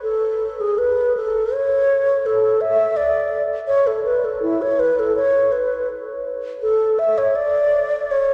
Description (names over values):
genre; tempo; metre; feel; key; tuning
classical, free, expressive piece for unaccompanied alto flute; 82 BPM; 3/4; uneven beats, rubato; unclear; A4 = 439 Hz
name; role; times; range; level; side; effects
wooden-headed alto flute; solo; 0.0-8.3 s; E4 to E5; -19 LUFS; equal; none
room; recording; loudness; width
wet cathedral reverb, RT60 4.3 s; none; -19 LUFS; mono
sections
0.0-8.3 A section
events
none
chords
none